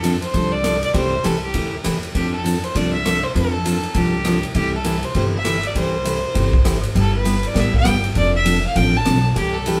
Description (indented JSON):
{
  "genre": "country, western swing",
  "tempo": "200 BPM",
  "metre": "4/4",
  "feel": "swing 60% on 8ths",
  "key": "C major",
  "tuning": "A4 = 440 Hz",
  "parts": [
    { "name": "clear fiddle", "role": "melody", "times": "0.0-9.8 s", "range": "G4 to A5", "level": "-25 LUFS", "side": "equal", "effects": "none" },
    { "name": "picked steel-string acoustic guitar", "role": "accompaniment", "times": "0.0-9.8 s", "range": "C3 to A4", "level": "-24 LUFS", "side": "equal", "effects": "none" },
    { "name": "upright bass", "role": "bass", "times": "0.0-9.8 s", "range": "F1 to F2", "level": "-25 LUFS", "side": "equal", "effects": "none" },
    { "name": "swinging big-band drum kit", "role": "drums", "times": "0.0-9.7 s", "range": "hi-hat, kick drum, ride cymbal, rim click, snare drum", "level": "-26 LUFS", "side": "equal", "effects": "none" }
  ],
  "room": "moderate studio reverb, RT60 0.9 s",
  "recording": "band playing live in one room",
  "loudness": "-19 LUFS",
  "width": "mono",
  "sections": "0.0-9.8 A section",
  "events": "none",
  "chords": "0.0 F6; 0.9 C6; 2.1 F6; 4.5 C6; 7.0 G6; 8.2 F6"
}